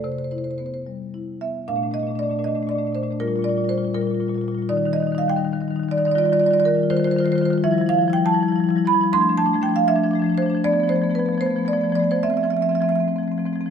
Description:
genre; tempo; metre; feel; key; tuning
classical, contemporary piece for solo marimba; 71-82 BPM (dotted quarters); 6/8; rubato; unclear; A4 = 440 Hz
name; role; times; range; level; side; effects
marimba with medium mallets; solo; 0.0-13.7 s; Bb2 to C6; -19 LUFS; equal; none
room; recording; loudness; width
wet recital hall reverb, RT60 1.8 s; none; -18 LUFS; side -7 dB against mid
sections
0.0-1.7 A section; 1.7-13.7 B section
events
none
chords
0.0 Cmaj7; 1.7 Bbmaj7; 3.2 Gm7/Bb; 4.7 Eb; 6.2 Ebadd9; 7.6 Fmaj9; 9.1 Fmaj13; 10.6 F; 12.2 Fmaj7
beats
| 0.05 0.86 | 1.67 2.44 | 3.19 3.94 | 4.69 5.43 | 6.16 6.90 | 7.64 8.39 | 9.13 9.89 | 10.65 11.42 | 12.24 13.07

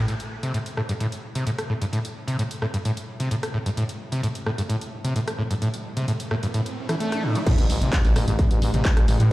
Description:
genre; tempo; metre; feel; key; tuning
driving peak-time techno; 130 BPM; 4/4; straight; A minor; A4 = 440 Hz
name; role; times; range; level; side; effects
growling FM bass; bass; 0.0-0.1, 7.6-9.3 s; A1 to A2; -23 LUFS; equal; sidechain pumping
screaming distorted acid line; riff; 0.1-9.2 s; G2 to A3; -25 LUFS; equal; distortion, lush chorus, sidechain pumping, tape echo
techno drum kit; drums; 0.1-9.3 s; crash cymbal, handclaps, hi-hat, rim click; -33 LUFS; equal; none
riser and impact; sound effects; 4.9-9.3 s; none; -33 LUFS; right 1 dB; none
metallic inharmonic drone; drone; 7.9-9.3 s; A2 to E3; -28 LUFS; equal; chorus, built-in reverb, sidechain pumping
electronic kick drum; drums; 7.5-8.9 s; none; -20 LUFS; equal; distortion
room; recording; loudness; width
moderate huge ambient reverb, RT60 4.4 s; played on a big sound system in a bare room, stone room reverb; -22 LUFS; side -17 dB against mid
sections
0.1-7.5 A section; 7.5-9.3 B section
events
riser 4.9-7.5; drop 7.5-9.3; impact 7.5-9.3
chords
0.1 A5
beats
| 0.08 0.54 1.00 1.47 | 1.93 2.39 2.85 3.31 | 3.77 4.24 4.70 5.16 | 5.62 6.08 6.54 7.00 | 7.47 7.93 8.39 8.85 | 9.31

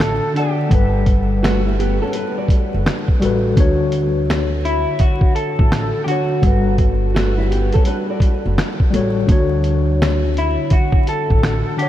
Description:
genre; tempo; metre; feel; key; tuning
lo-fi hip hop; 84 BPM; 4/4; swing 66% on 16ths; D major; A4 = 440 Hz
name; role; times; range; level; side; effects
electric guitar through a small old amp; melody; 0.0-11.9 s; E4 to A4; -24 LUFS; equal; analog chorus, low-pass filter, analog delay
tine electric piano; accompaniment; 0.0-11.9 s; D3 to F#5; -20 LUFS; left 2 dB; medium stereo tremolo, cassette tape, low-pass filter
upright bass; bass; 0.0-11.6 s; F#1 to D2; -19 LUFS; equal; none
lo-fi sampler-style drum kit; drums; 0.0-11.9 s; finger snaps, hi-hat, kick drum, snare drum; -18 LUFS; equal; none
nylon-string guitar; second line; 1.4-9.1 s; G3 to D5; -26 LUFS; right 2 dB; wide subtle chorus, low-pass filter, analog delay
room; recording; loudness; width
moderate huge ambient reverb, RT60 6.5 s; dreamy mix soaked in reverb, vinyl crackle; -14 LUFS; side -12 dB against mid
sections
0.0-11.9 A section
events
none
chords
0.0 Dmaj7; 0.7 Gmaj9; 3.6 Dmaj7; 6.4 Gmaj9; 9.3 Dmaj7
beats
0.00 | 0.71 1.43 2.14 2.85 | 3.57 4.28 5.00 5.71 | 6.43 7.14 7.85 8.57 | 9.28 10.00 10.71 11.43

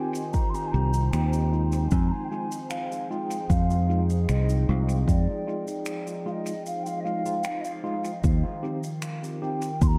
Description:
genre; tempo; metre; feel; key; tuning
ambient dub; 76 BPM; 4/4; straight; F minor; A4 = 440 Hz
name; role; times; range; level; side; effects
mellow hollow wooden flute; melody; 0.0-10.0 s; D5 to C6; -36 LUFS; equal; dub echo
warbly tape-like pad; sustained chords; 0.0-10.0 s; Eb3 to G5; -37 LUFS; equal; chorus, built-in reverb, vintage 12-bit sampler grit
bright tine electric piano; stabs; 0.0-9.7 s; Ab3 to G4; -38 LUFS; equal; dub echo
bubbling stepped-filter texture; texture; 0.0-8.3 s; Eb4 to C5; -45 LUFS; equal; chorus, built-in reverb
shaker and finger snaps; drums; 0.2-10.0 s; none; -44 LUFS; equal; dub echo
electronic kick drum; drums; 0.3-10.0 s; none; -27 LUFS; equal; overdrive
fingered electric bass; bass; 0.7-10.0 s; C2 to F2; -25 LUFS; equal; none
room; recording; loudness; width
light reverb, small room ambience; none; -27 LUFS; mono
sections
0.0-8.2 A section; 8.2-10.0 B section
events
kick drops out 6.7-8.2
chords
0.0 Eb6; 1.9 Fm7; 8.2 Eb6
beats
0.34 1.13 | 1.92 2.71 3.50 4.29 | 5.08 5.87 6.66 7.45 | 8.24 9.03 9.81

